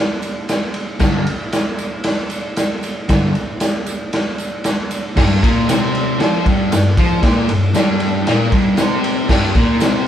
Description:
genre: garage rock duo or trio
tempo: 116 BPM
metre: 4/4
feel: straight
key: G minor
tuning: A4 = 436 Hz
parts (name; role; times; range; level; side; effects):
- raw garage drum kit; drums; 0.2-9.9 s; crash cymbal, kick drum, ride cymbal, snare drum; -17 LUFS; equal; none
- tambourine; percussion; 0.2-9.9 s; none; -34 LUFS; right 5 dB; none
- fuzz guitar; riff; 1.0-10.1 s; G2 to F4; -16 LUFS; left 1 dB; distortion
room: moderate studio reverb, RT60 0.6 s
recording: band playing live in one room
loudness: -14 LUFS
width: side -10 dB against mid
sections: 0.0-5.2 A section; 5.2-10.1 B section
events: none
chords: 0.0 G5; 5.2 Gm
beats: 0.50 | 1.02 1.54 2.06 2.58 | 3.10 3.61 4.13 4.65 | 5.17 5.69 6.20 6.72 | 7.24 7.75 8.27 8.78 | 9.30 9.81

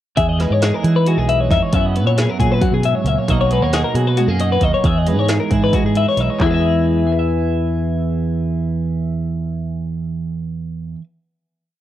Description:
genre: math rock and midwest emo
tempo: 270 BPM (eighths)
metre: 7/8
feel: straight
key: E lydian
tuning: A4 = 440 Hz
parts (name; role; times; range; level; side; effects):
- twelve-string electric guitar; accompaniment; 0.2-11.0 s; E2 to E5; -22 LUFS; right 7 dB; lush chorus
- twelve-string electric guitar; arpeggios; 0.2-11.0 s; E4 to E5; -20 LUFS; left 7 dB; none
- fingered electric bass; bass; 0.2-10.9 s; B1 to E3; -19 LUFS; equal; none
- deep house drum kit; drums; 0.2-6.5 s; handclaps, hi-hat, kick drum, snare drum; -21 LUFS; equal; cassette tape
room: light reverb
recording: home recording on cassette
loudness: -15 LUFS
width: side -12 dB against mid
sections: 0.2-6.4 A section; 6.4-9.5 final chord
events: none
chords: 0.2 Emaj7; 1.7 F#7sus4; 3.3 Bmaj9; 4.8 Emaj7; 6.4 E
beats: | 0.16 0.39 0.61 0.83 1.05 1.27 1.50 | 1.72 1.94 2.17 2.39 2.61 2.84 3.06 | 3.28 3.51 3.73 3.95 4.18 4.40 4.62 | 4.84 5.07 5.29 5.51 5.74 5.96 6.18 | 6.40 6.62 6.84 7.06 7.28 7.50 7.72 | 7.95 8.17 8.38 8.61 8.82 9.04 9.26

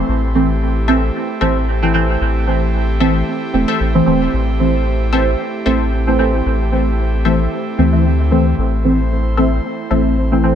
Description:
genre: dub techno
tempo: 113 BPM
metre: 4/4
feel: swing 55% on 16ths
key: A minor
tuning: A4 = 439 Hz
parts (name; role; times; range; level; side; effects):
- airy breathy pad; sustained chords; 0.0-10.6 s; A3 to C5; -23 LUFS; right 3 dB; chorus, vintage 12-bit sampler grit
- soft dub sub bass; bass; 0.0-10.6 s; E1 to D2; -17 LUFS; left 1 dB; none
- deep mellow chord stab; stabs; 0.3-10.6 s; E3 to C4; -16 LUFS; equal; chorus, phaser, vintage 12-bit sampler grit, dub echo
- filtered dub chord stab; riff; 0.9-10.1 s; A4 to E5; -25 LUFS; left 5 dB; chorus, dub echo
room: moderate spring reverb, RT60 1.3 s, digital ambience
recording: none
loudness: -13 LUFS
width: side -9 dB against mid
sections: 0.0-10.6 A section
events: none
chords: 0.0 Am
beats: | 0.08 0.61 1.14 1.68 | 2.21 2.74 3.27 3.80 | 4.33 4.86 5.39 5.92 | 6.45 6.99 7.52 8.05 | 8.58 9.11 9.64 10.17

